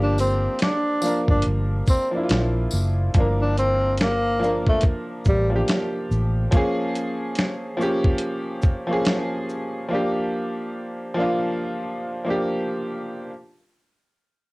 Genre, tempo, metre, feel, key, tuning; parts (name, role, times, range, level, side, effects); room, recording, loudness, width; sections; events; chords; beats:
lo-fi hip hop; 71 BPM; 4/4; swing 59% on 16ths; G minor; A4 = 440 Hz
breathy tenor saxophone; melody; 0.0-5.5 s; G3 to D4; -23 LUFS; equal; cassette tape
clear upright piano; accompaniment; 0.0-13.3 s; F3 to Bb4; -24 LUFS; equal; cassette tape
vintage muted fingered electric bass; bass; 0.0-6.5 s; F#1 to Bb1; -22 LUFS; equal
dusty soul sampler-style drum kit; drums; 0.2-9.7 s; hi-hat, kick drum, shaker, snare drum; -20 LUFS; equal; vintage 12-bit sampler grit, cassette tape
tambourine; percussion; 0.2-2.9 s; -36 LUFS; left 2 dB
light reverb; home recording on cassette; -20 LUFS; side -23 dB against mid
0.0-13.3 A section
0.0 Gm7; 6.5 Bbm7; 9.9 Gm7
0.61 1.45 2.30 | 3.15 3.99 4.83 5.68 | 6.53 7.37 8.21 9.06 | 9.90 10.75 11.60 12.44